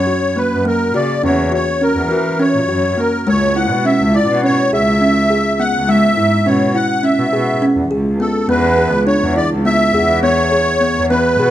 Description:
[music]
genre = contemporary instrumental, chamber music in an uneven meter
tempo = 207 BPM (eighths)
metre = 9/8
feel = straight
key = unclear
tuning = A4 = 440 Hz
[part]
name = musette accordion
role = melody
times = 0.0-11.5 s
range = A4 to F#5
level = -16 LUFS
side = equal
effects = none
[part]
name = warm cello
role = bass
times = 0.0-11.5 s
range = C#2 to E3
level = -18 LUFS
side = equal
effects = none
[part]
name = kalimba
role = arpeggios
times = 0.1-11.5 s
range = G#3 to G#4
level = -17 LUFS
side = equal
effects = none
[sound]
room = light reverb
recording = minimal, uncompressed stereo recording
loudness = -12 LUFS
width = side -12 dB against mid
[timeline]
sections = 0.0-11.5 A section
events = none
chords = 0.0 F#; 3.3 C#m; 8.5 E

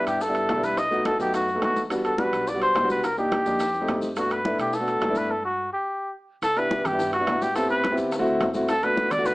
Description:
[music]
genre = Afro-Cuban jazz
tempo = 212 BPM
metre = 4/4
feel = straight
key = unclear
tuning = A4 = 440 Hz
[part]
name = warm trumpet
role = melody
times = 0.0-9.3 s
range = F#4 to D#5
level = -24 LUFS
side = equal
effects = none
[part]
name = warm concert grand piano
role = accompaniment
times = 0.0-9.3 s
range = G3 to A4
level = -26 LUFS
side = equal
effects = none
[part]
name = upright bass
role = bass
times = 0.1-9.3 s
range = G1 to B2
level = -41 LUFS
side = equal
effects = none
[part]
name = maracas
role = percussion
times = 0.1-9.3 s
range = none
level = -45 LUFS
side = left 2 dB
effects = none
[part]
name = timbales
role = percussion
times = 0.1-9.3 s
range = none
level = -34 LUFS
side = right 2 dB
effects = none
[part]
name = bongos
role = percussion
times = 0.2-9.3 s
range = none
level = -35 LUFS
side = left 2 dB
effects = none
[part]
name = congas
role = percussion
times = 0.2-9.3 s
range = none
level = -36 LUFS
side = left 1 dB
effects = none
[sound]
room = moderate studio reverb, RT60 0.9 s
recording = small speaker sound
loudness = -22 LUFS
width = side -20 dB against mid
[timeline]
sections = 0.0-6.4 A section; 6.4-9.3 B section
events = stop 5.3-6.4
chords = 0.0 Cmaj7 (rootless); 0.8 B7; 1.9 Em7; 3.0 Cm7; 3.6 F9; 4.2 Gmaj9; 6.4 Cmaj7; 7.6 Am9; 8.1 D9; 8.7 Gmaj9

